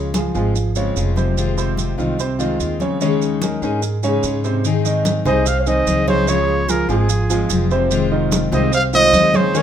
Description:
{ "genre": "latin, Cuban son and guajira", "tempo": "147 BPM", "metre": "4/4", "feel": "straight", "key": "Ab major", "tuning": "A4 = 440 Hz", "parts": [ { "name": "picked steel-string acoustic guitar", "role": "accompaniment", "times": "0.0-9.6 s", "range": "C3 to Ab4", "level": "-22 LUFS", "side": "left 7 dB", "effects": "none" }, { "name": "warm grand piano", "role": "arpeggios", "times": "0.0-9.6 s", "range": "C3 to Db5", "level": "-22 LUFS", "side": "right 3 dB", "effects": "none" }, { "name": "upright bass", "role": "bass", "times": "0.0-9.6 s", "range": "F1 to Ab2", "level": "-21 LUFS", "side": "right 1 dB", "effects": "none" }, { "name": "congas", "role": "percussion", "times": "0.1-9.6 s", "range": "none", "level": "-24 LUFS", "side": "left 2 dB", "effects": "none" }, { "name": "maracas", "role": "percussion", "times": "0.1-9.6 s", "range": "none", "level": "-29 LUFS", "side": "right 10 dB", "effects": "none" }, { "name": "warm trumpet", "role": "melody", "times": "5.3-9.6 s", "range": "Ab4 to F5", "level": "-18 LUFS", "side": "right 1 dB", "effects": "none" }, { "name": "mellow hollow wooden-headed alto flute", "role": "second line", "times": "5.3-9.6 s", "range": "F4 to Db5", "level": "-23 LUFS", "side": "right 3 dB", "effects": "none" } ], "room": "light reverb", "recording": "minimal, uncompressed stereo recording", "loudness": "-15 LUFS", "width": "side -9 dB against mid", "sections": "0.0-4.6 A section; 4.6-9.6 B section", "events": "none", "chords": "0.0 Dbmaj7; 1.4 Fm7; 3.0 Eb7sus4; 4.6 Abmaj7; 6.3 Dbmaj7; 7.9 Fm7" }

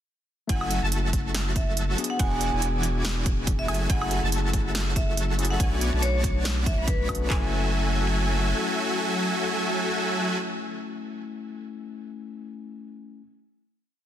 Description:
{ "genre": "future bass", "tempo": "141 BPM", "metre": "4/4", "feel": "swing 56% on 16ths, half-time", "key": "F# minor", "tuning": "A4 = 437 Hz", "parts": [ { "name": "vibraphone with medium hard mallets", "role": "melody", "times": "0.5-7.3 s", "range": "B4 to G#5", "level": "-33 LUFS", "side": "right 1 dB", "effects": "sidechain pumping, ping-pong delay" }, { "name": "overdriven tine electric piano", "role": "accompaniment", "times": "0.5-13.2 s", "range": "A3 to G#5", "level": "-33 LUFS", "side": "left 6 dB", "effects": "sidechain pumping, tape echo" }, { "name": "wide unison pluck", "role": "arpeggios", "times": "0.5-10.4 s", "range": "F#5 to B5", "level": "-38 LUFS", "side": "right 1 dB", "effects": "sidechain pumping, tape echo" }, { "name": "supersaw chords", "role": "riff", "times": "0.5-10.4 s", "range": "E3 to B5", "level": "-28 LUFS", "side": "right 1 dB", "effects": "sidechain pumping, tape echo" }, { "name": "saturated sub bass", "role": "bass", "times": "0.5-8.5 s", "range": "E1 to B1", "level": "-27 LUFS", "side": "equal", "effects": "sidechain pumping" }, { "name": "big-room dance drum kit", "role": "drums", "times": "0.5-7.2 s", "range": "hi-hat, snare drum, woodblock", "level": "-31 LUFS", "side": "right 2 dB", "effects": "none" }, { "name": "trap drum kit", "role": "drums", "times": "0.5-7.4 s", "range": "handclaps, kick drum", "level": "-26 LUFS", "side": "equal", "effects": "none" } ], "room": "light reverb, digital ambience", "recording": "dense, heavily limited modern master", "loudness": "-23 LUFS", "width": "side -11 dB against mid", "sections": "0.5-7.3 drop; 7.3-10.7 final chord", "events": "drop 0.5-7.3", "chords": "0.5 F#m7; 2.0 E9; 3.7 F#m7; 5.6 Bm7; 7.3 F#m7" }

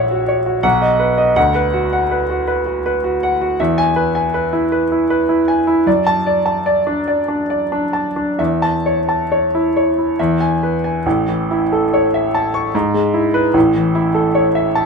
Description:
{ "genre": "classical, romantic character piece for solo piano", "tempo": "64-86 BPM", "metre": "3/4", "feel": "rubato", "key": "A major", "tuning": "A4 = 438 Hz", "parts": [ { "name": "clear grand piano", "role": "solo", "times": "0.0-14.9 s", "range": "A1 to C#6", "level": "-14 LUFS", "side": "equal", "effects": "none" } ], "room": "light reverb", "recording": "minimal, uncompressed stereo recording", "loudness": "-14 LUFS", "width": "side -5 dB against mid", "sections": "0.0-11.1 A section; 11.1-14.9 B section", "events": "none", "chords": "0.0 F#7/A#; 0.6 B; 1.4 Bm/D; 3.6 E; 5.9 D/F#; 8.4 A/E; 10.2 E; 11.1 A; 12.7 E/G#; 13.5 A" }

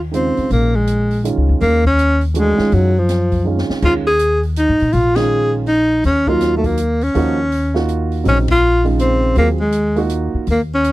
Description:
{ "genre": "modal jazz", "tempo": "162 BPM", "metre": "3/4", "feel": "swing 63% on 8ths", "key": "Eb dorian", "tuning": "A4 = 439 Hz", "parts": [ { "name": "upright bass", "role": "bass", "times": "0.0-10.9 s", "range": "Bb1 to Bb2", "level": "-18 LUFS", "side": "left 1 dB", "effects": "none" }, { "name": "warm upright piano", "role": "accompaniment", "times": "0.1-10.5 s", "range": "Db3 to Ab4", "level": "-20 LUFS", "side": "right 5 dB", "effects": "none" }, { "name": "open jazz drum kit", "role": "drums", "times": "0.1-10.9 s", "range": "crash cymbal, hi-hat, kick drum, ride cymbal, snare drum", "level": "-27 LUFS", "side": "equal", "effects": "none" }, { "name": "clear tenor saxophone", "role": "melody", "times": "0.2-10.9 s", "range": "F3 to Ab4", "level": "-15 LUFS", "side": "equal", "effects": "none" } ], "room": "little or no reverb", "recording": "dry, close 1970s-style studio recording", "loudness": "-13 LUFS", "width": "side -17 dB against mid", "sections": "0.0-10.9 A section", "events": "drum fill 3.5-3.8; band accent 5.1, 8.4", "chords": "0.0 Ebm11" }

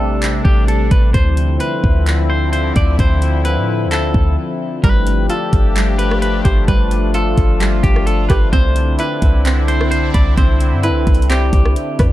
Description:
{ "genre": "hip hop, atmospheric cloud-rap", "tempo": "130 BPM", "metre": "4/4", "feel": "half-time", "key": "unclear", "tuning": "A4 = 440 Hz", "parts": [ { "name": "clean electric guitar", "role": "melody", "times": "0.0-11.7 s", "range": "G4 to D5", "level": "-22 LUFS", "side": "left 1 dB", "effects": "ping-pong delay" }, { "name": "sweeping resonant pad", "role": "sustained chords", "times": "0.0-12.1 s", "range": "C3 to G4", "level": "-20 LUFS", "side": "left 2 dB", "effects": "chorus, sidechain pumping" }, { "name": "clean 808-style bass", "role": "bass", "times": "0.0-12.1 s", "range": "G1 to A2", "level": "-15 LUFS", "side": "equal", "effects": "none" }, { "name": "trap drum kit", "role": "drums", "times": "0.2-12.1 s", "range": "handclaps, hi-hat, kick drum, rim click", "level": "-16 LUFS", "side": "equal", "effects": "none" }, { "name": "string-like resonator pluck", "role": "arpeggios", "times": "4.8-12.1 s", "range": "G3 to B5", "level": "-26 LUFS", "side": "right 4 dB", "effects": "chorus, ping-pong delay" } ], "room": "digital ambience", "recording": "dark, warm production", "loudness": "-12 LUFS", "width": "side -15 dB against mid", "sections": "0.0-4.8 A section; 4.8-12.1 B section", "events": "break 4.4-4.8", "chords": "0.0 Am7; 1.1 Dm9; 4.8 G9; 8.5 Cmaj9" }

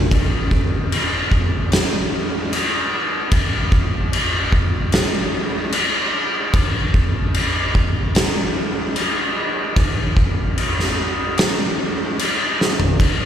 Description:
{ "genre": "metal", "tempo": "74 BPM", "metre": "4/4", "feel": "straight", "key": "none", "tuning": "none", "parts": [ { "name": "oversized low-tuned drum kit", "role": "drums", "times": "0.1-13.2 s", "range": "crash cymbal, kick drum, snare drum, toms", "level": "-16 LUFS", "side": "equal", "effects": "none" } ], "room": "little or no reverb", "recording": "live gig heard through the venue's PA, recital hall reverb", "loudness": "-17 LUFS", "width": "side -9 dB against mid", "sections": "0.1-13.3 A section", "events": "drum fill 12.6-13.0", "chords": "none" }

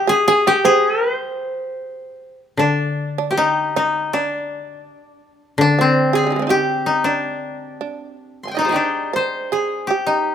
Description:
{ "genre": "japanese traditional, Japanese chamber music", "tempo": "75-84 BPM", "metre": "2/4", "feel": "rubato", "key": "C hirajoshi", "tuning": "A4 = 438 Hz", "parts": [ { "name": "koto", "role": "melody", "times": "0.0-10.3 s", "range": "C4 to C6", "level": "-18 LUFS", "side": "left 2 dB", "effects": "none" }, { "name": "shamisen", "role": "second line", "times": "0.0-10.3 s", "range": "C3 to C6", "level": "-22 LUFS", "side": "right 8 dB", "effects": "none" }, { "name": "koto", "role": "accompaniment", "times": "2.6-7.8 s", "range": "D3", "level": "-21 LUFS", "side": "left 4 dB", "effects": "none" } ], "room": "light reverb", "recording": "close, detailed microphones", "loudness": "-16 LUFS", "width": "side -8 dB against mid", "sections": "0.0-2.6 A section; 2.6-10.3 B section", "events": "none", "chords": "none" }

